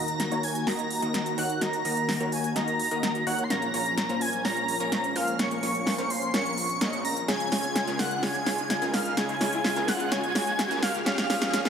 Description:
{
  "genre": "EDM, festival progressive house",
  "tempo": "127 BPM",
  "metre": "4/4",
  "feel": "straight",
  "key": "Bb minor",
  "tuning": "A4 = 440 Hz",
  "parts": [
    { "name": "airy dreamy lead", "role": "melody", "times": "0.0-11.7 s", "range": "F5 to Db6", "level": "-29 LUFS", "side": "equal", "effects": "chorus, dub echo" },
    { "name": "lush unison pad", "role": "sustained chords", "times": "0.0-11.7 s", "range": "Db3 to Gb4", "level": "-34 LUFS", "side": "left 1 dB", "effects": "chorus, phaser" },
    { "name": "supersaw stab", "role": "riff", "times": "0.0-11.7 s", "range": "Ab3 to Eb5", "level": "-32 LUFS", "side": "equal", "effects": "low-pass filter" },
    { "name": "fat analog bass", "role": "bass", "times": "0.0-11.7 s", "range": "Bb1 to Eb2", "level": "-39 LUFS", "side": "equal", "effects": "high-pass filter" },
    { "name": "riser", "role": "sound effects", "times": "3.5-11.7 s", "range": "none", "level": "-38 LUFS", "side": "right 1 dB", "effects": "none" },
    { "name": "big-room dance drum kit", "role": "drums", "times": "0.1-11.7 s", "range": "hi-hat, snare drum", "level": "-30 LUFS", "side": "equal", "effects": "overdrive" }
  ],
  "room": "moderate lush hall reverb, RT60 2.0 s",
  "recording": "high-pass filter",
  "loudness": "-24 LUFS",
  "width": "side -7 dB against mid",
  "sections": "0.0-11.7 A section",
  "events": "build-up 0.0-11.7; drum fill 0.0-11.7; filter sweep on supersaw synth 0.0-11.7; riser 3.5-11.7",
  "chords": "0.0 Ebm; 3.5 Bbm; 7.3 Db; 11.1 Bbm"
}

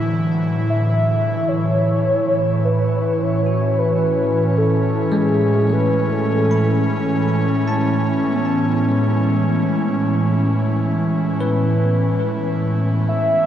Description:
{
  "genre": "ambient",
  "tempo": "78 BPM",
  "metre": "4/4",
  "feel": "straight",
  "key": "A major",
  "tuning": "A4 = 439 Hz",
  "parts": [
    { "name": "airy breathy pad", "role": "sustained chords", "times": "0.0-13.5 s", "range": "A2 to E4", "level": "-18 LUFS", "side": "equal", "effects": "chorus, shimmer reverb" },
    { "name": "bell-like tine electric piano", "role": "arpeggios", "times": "0.0-13.5 s", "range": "G#3 to B5", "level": "-24 LUFS", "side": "equal", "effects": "lush chorus, shimmer reverb, tape echo" },
    { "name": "organ-like drone", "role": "drone", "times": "0.3-1.5 s", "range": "C#4 to G#4", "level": "-46 LUFS", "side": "left 1 dB", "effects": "none" },
    { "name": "warm velvety synth lead", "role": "melody", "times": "0.7-7.3, 13.1-13.5 s", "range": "G#4 to E5", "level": "-21 LUFS", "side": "left 1 dB", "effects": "chorus, shimmer reverb, tape echo" }
  ],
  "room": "wet huge ambient reverb, RT60 7.6 s",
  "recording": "dreamy mix soaked in reverb",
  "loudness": "-16 LUFS",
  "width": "side -10 dB against mid",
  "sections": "0.0-1.5 A section; 1.5-13.5 B section",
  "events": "none",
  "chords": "0.0 Dadd9/A; 1.5 Amaj7"
}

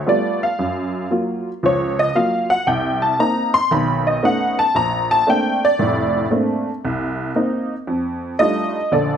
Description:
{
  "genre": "solo jazz",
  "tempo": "115 BPM",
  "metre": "4/4",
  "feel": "swing 67% on 8ths",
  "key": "Bb major",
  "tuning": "A4 = 437 Hz",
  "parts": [
    { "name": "honky-tonk upright piano", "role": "solo", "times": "0.0-9.2 s", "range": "F1 to C6", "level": "-16 LUFS", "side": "equal", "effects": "none" }
  ],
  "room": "light reverb",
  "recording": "none",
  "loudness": "-16 LUFS",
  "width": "side -8 dB against mid",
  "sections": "0.0-8.9 A section",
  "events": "honky-tonk piano solo 0.0-8.9",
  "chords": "0.0 G9; 0.6 Gbmaj7; 2.7 Cm7; 3.7 B9; 4.8 Bbmaj9; 6.8 Cm7; 7.9 F13"
}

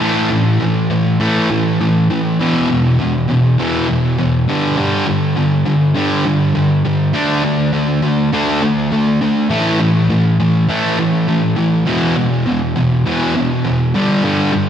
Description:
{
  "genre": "rock",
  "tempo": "101 BPM",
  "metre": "4/4",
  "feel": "straight",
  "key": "unclear",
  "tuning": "A4 = 440 Hz",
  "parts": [
    { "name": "fuzz guitar", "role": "solo", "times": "0.0-14.7 s", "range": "E2 to D4", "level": "-13 LUFS", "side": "equal", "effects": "distortion, digital delay" }
  ],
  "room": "moderate lush hall reverb, RT60 2.8 s",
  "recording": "big arena sound",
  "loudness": "-13 LUFS",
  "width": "side -9 dB against mid",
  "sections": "0.0-14.7 A section",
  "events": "none",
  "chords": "0.0 A5; 2.4 E5; 4.5 G5; 7.1 D5; 9.5 A5; 11.9 E5; 14.0 G5"
}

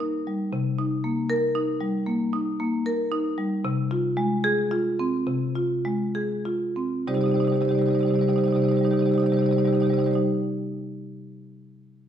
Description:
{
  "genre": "classical, contemporary piece for solo marimba",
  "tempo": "64-79 BPM",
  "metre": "4/4",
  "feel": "rubato",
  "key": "C minor",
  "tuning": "A4 = 441 Hz",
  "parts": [
    { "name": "marimba with medium hard mallets", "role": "solo", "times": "0.0-10.2 s", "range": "C3 to D5", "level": "-22 LUFS", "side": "equal", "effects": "none" }
  ],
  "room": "wet recital hall reverb, RT60 1.4 s",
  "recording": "none",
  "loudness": "-22 LUFS",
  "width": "side -9 dB against mid",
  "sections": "0.5-7.1 A section; 7.1-10.7 B section",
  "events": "slowing down 0.0-7.1",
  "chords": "0.0 Cm7 (rootless); 0.5 Cm7; 3.6 Ab6/C; 7.1 Cmadd9"
}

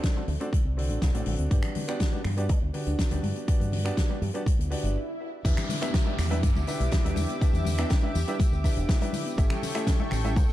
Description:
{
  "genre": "nu-disco, nu disco",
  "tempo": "122 BPM",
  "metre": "4/4",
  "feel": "straight",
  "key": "E minor",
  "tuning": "A4 = 440 Hz",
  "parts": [
    { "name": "warm grand piano", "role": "accompaniment", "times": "0.0-10.3 s", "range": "B3 to E5", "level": "-34 LUFS", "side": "right 1 dB", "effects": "sidechain pumping, digital delay" },
    { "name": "soft round pluck", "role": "arpeggios", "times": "0.0-10.5 s", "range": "C#3 to A4", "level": "-38 LUFS", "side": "left 2 dB", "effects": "chorus, vintage 12-bit sampler grit, sidechain pumping, digital delay" },
    { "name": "electronic kick drum", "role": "drums", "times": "0.0-10.5 s", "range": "none", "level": "-24 LUFS", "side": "equal", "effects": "none" },
    { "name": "huge arena drum kit", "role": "drums", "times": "0.0-10.5 s", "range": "crash cymbal, finger snaps, hi-hat, snare drum, tambourine", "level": "-35 LUFS", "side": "left 1 dB", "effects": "none" },
    { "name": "congas", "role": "percussion", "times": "0.2-10.5 s", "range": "none", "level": "-37 LUFS", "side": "left 3 dB", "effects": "none" },
    { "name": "fingered electric bass with an envelope filter", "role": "bass", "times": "0.3-10.5 s", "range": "E1 to B2", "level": "-28 LUFS", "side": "equal", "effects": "none" },
    { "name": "swell and downlifter", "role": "sound effects", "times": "4.7-9.4 s", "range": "none", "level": "-40 LUFS", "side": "equal", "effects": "none" },
    { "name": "lush unison pad", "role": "sustained chords", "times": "5.4-10.5 s", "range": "G4 to D6", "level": "-37 LUFS", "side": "right 1 dB", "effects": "chorus, sidechain pumping" }
  ],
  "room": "studio reverb",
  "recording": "dark, warm production",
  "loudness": "-24 LUFS",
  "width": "side -14 dB against mid",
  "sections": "0.0-5.4 A section; 5.4-10.5 B section",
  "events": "swell 4.7-5.4; stop 5.0-5.4; drop 5.4-10.5",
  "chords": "0.0 D7; 1.5 Gmaj7; 5.4 Em7; 9.4 A7"
}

